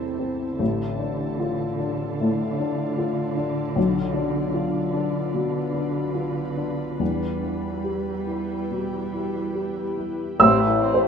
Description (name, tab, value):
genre	neoclassical piano and strings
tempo	69-78 BPM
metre	4/4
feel	rubato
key	unclear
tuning	A4 = 440 Hz
part	warm cello	second line	0.0-10.2 s	C3 to G3	-30 LUFS	right 6 dB	none
part	dark upright piano	accompaniment	0.0-11.1 s	A1 to E6	-23 LUFS	left 2 dB	none
part	ethereal airy pad	sustained chords	0.0-11.1 s	C4 to E5	-32 LUFS	equal	ensemble chorus, built-in reverb
part	warm viola	accompaniment	10.4-11.1 s	A3 to C4	-26 LUFS	right 6 dB	none
room	light reverb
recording	minimal, uncompressed stereo recording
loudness	-22 LUFS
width	side -7 dB against mid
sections	0.0-10.4 A section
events	none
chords	0.0 Am; 0.6 Dm/A; 3.8 Bdim; 7.0 Em; 10.4 Am